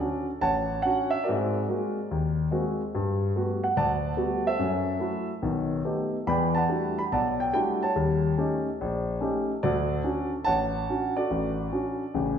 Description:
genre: solo jazz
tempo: 143 BPM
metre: 4/4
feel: swing 68% on 8ths, rubato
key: D major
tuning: A4 = 440 Hz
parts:
  - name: warm grand piano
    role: solo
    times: 0.0-12.4 s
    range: A1 to B5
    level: -24 LUFS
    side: equal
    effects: none
room: wet recital hall reverb, RT60 1.4 s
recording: recorded in a church or concert hall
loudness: -24 LUFS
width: side -8 dB against mid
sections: 0.0-12.4 A section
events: none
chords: 0.0 Dmaj7; 1.3 G#9; 2.9 Gmaj9; 4.6 F#m7b5; 5.4 Baug7; 6.3 Em11; 8.0 Eb7#11; 9.6 Dmaj7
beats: 0.42 0.84 | 1.25 1.67 2.09 2.50 | 2.92 3.34 3.75 4.17 | 4.59 5.01 5.43 5.86 | 6.28 6.71 7.13 7.55 | 7.96 8.38 8.80 9.22 | 9.64 10.05 10.47 10.89 | 11.31 11.73 12.15

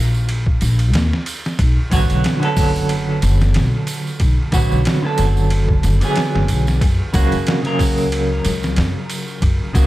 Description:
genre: trip hop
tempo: 92 BPM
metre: 4/4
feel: swing 55% on 16ths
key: unclear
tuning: A4 = 439 Hz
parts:
  - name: upright bass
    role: bass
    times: 0.0-9.9 s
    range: F#1 to Gb2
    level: -17 LUFS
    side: equal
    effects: none
  - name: tambourine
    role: percussion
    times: 0.1-9.9 s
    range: none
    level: -33 LUFS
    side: right 4 dB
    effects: none
  - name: trip hop sampler-style drum kit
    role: drums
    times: 0.3-9.9 s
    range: hi-hat, kick drum, ride cymbal, snare drum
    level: -20 LUFS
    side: equal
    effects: overdrive
  - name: semi-hollow electric guitar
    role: accompaniment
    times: 1.9-9.9 s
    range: Db3 to Bb4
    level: -19 LUFS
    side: right 1 dB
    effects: tremolo, tape echo
room: little or no reverb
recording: none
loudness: -15 LUFS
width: side -16 dB against mid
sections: 0.0-9.9 A section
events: none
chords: 0.0 N.C.; 1.6 Bm; 6.8 Gb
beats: 0.29 0.94 | 1.59 2.25 2.90 3.55 | 4.20 4.86 5.51 6.16 | 6.81 7.46 8.12 8.77 | 9.42

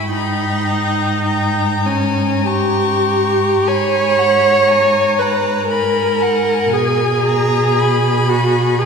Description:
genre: classical, slow romantic movement for string quartet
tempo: 48-60 BPM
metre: 3/4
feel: rubato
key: G# minor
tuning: A4 = 436 Hz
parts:
  - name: clear violin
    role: melody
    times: 0.0-8.9 s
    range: G#5 to C#6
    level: -23 LUFS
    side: left 7 dB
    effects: none
  - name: rich violin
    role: second line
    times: 0.0-8.9 s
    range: F#5 to B5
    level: -23 LUFS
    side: left 3 dB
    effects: none
  - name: rich viola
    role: accompaniment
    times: 0.0-8.9 s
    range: C#4 to C#5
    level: -15 LUFS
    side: right 1 dB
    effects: none
  - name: rich cello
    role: bass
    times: 0.0-8.9 s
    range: G#2 to B2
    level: -20 LUFS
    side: right 2 dB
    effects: none
room: wet church reverb, RT60 2.9 s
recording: recorded in a church or concert hall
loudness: -13 LUFS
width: side -5 dB against mid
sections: 0.0-8.9 A section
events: none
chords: 0.1 D#/G#; 3.7 G#m; 6.7 G#m/B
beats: | 0.11 1.25 2.47 | 3.66 4.69 5.70 | 6.74 7.76 8.80

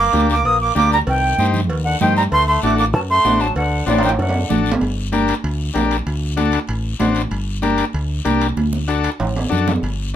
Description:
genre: latin, cumbia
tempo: 192 BPM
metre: 4/4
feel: straight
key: G harmonic minor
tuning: A4 = 440 Hz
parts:
  - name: jazz flute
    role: melody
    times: 0.0-4.5 s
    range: D5 to Eb6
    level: -17 LUFS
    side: right 2 dB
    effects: none
  - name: bright trombone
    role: second line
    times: 0.0-4.5 s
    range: A2 to Bb3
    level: -25 LUFS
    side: right 1 dB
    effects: none
  - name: fingered electric bass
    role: bass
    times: 0.0-10.2 s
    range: G1 to G2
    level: -21 LUFS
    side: equal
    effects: none
  - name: combo organ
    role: accompaniment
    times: 0.1-9.7 s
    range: D4 to C5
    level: -20 LUFS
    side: left 5 dB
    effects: none
  - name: congas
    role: percussion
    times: 0.1-10.0 s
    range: none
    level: -22 LUFS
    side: right 3 dB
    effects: none
  - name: guiro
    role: percussion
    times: 0.1-10.1 s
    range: none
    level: -33 LUFS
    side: left 7 dB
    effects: none
  - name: cowbell and timbales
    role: percussion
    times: 0.5-10.0 s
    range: none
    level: -26 LUFS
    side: right 4 dB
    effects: none
room: light reverb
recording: close, detailed microphones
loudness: -15 LUFS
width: side -10 dB against mid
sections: 0.0-4.8 A section; 4.8-10.2 B section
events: drum fill 3.9-4.8, 8.6-9.8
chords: 0.0 Gm; 1.1 Cm; 2.3 D7; 4.8 Gm; 6.1 D7; 7.3 Gm; 8.6 D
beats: 0.14 0.45 0.76 | 1.07 1.39 1.70 2.01 | 2.32 2.63 2.94 3.26 | 3.57 3.88 4.19 4.50 | 4.82 5.13 5.44 5.75 | 6.07 6.38 6.69 7.01 | 7.32 7.63 7.95 8.26 | 8.57 8.89 9.20 9.51 | 9.83 10.14

